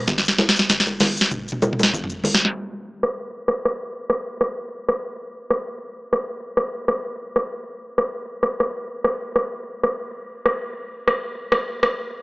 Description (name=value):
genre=afrobeats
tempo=97 BPM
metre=4/4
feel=swing 55% on 16ths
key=none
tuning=none
part: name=booming analog drum machine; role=drums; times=0.1-12.0 s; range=hi-hat, kick drum, rim click, shaker, snare drum, toms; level=-21 LUFS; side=equal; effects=soft clipping on snare
part: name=congas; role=percussion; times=0.1-2.4 s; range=none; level=-24 LUFS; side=equal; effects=none
room=wet plate reverb, RT60 2.1 s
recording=blown-out, overdriven recording, overdrive, low-pass filter, small speaker sound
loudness=-20 LUFS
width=side -24 dB against mid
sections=0.0-2.6 A section; 2.6-12.2 B section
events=drum fill 0.1-2.6; filter sweep 2.6-12.2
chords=none